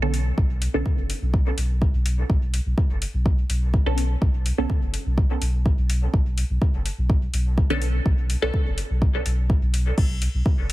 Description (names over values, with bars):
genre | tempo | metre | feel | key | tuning
dub techno | 125 BPM | 4/4 | straight | B minor | A4 = 440 Hz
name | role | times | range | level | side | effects
filtered dub chord stab | stabs | 0.0-8.7 s | D3 to A4 | -29 LUFS | right 1 dB | phaser, sidechain pumping, dub echo
pure sine sub bass | bass | 0.0-10.7 s | F#1 to B1 | -23 LUFS | equal | sidechain pumping
soft vintage rhythm box | drums | 0.1-10.7 s | crash cymbal, hi-hat | -32 LUFS | left 3 dB | none
electronic kick drum | drums | 0.4-10.6 s | none | -22 LUFS | equal | none
room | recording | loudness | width
little or no reverb | heavily compressed radio sound, multiband compression | -20 LUFS | side -17 dB against mid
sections
0.0-10.0 A section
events
none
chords
0.0 Bm9; 10.0 B5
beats
| 0.38 0.86 1.34 1.82 | 2.30 2.78 3.26 3.74 | 4.22 4.70 5.18 5.66 | 6.14 6.62 7.10 7.58 | 8.06 8.54 9.02 9.50 | 9.98 10.46